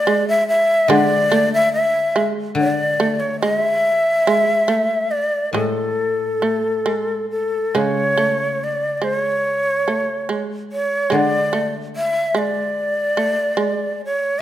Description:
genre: japanese traditional, Japanese chamber music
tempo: 72 BPM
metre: 4/4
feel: rubato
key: A ryukyu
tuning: A4 = 443 Hz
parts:
  - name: breathy bright shakuhachi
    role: melody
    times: 0.0-14.4 s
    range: A4 to E5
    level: -18 LUFS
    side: equal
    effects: none
  - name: shamisen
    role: second line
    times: 0.0-14.4 s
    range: G#3 to A3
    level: -23 LUFS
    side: right 3 dB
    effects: none
  - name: koto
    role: accompaniment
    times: 0.9-13.6 s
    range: A2 to D3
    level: -23 LUFS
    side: left 3 dB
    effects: none
room: moderate recital hall reverb, RT60 1.8 s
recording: none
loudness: -16 LUFS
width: side -12 dB against mid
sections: 0.0-7.8 A section; 7.8-14.4 B section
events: none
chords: none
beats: 0.07 | 0.91 1.74 2.58 3.42 | 4.27 5.13 5.99 6.88 | 7.77 8.62 9.47 10.30 | 11.13 11.95 12.78 13.60

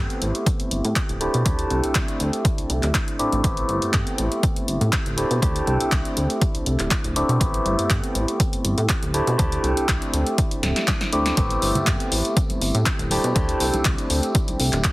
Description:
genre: filtered disco house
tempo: 121 BPM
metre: 4/4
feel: straight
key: unclear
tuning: A4 = 440 Hz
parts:
  - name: overdriven tine electric piano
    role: accompaniment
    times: 0.0-14.9 s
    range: A3 to G4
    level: -24 LUFS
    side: equal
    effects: phaser, sidechain pumping, low-pass filter
  - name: plucky analog bass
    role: bass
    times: 0.0-14.9 s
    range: D1 to B2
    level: -25 LUFS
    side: equal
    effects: sidechain pumping, low-pass filter
  - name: punchy analog drum machine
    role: drums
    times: 0.1-14.9 s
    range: handclaps, hi-hat, snare drum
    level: -26 LUFS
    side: equal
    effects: overdrive, sidechain pumping on hats
  - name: electronic kick drum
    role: drums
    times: 0.5-14.9 s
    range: none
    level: -23 LUFS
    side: equal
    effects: overdrive
  - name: tambourine and congas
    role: percussion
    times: 11.4-14.9 s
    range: none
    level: -33 LUFS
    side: right 1 dB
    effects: sidechain pumping on perc, low-pass filter on perc
room: digital ambience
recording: heavily compressed radio sound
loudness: -19 LUFS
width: side -19 dB against mid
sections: 0.0-14.9 A section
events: filter sweep 0.0-14.9; drum fill 10.6-11.4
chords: 0.0 D9sus4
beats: 0.47 0.96 | 1.46 1.95 2.45 2.95 | 3.44 3.94 4.43 4.93 | 5.42 5.92 6.42 6.91 | 7.41 7.91 8.40 8.90 | 9.39 9.89 10.38 10.88 | 11.38 11.87 12.37 12.86 | 13.36 13.86 14.35 14.85

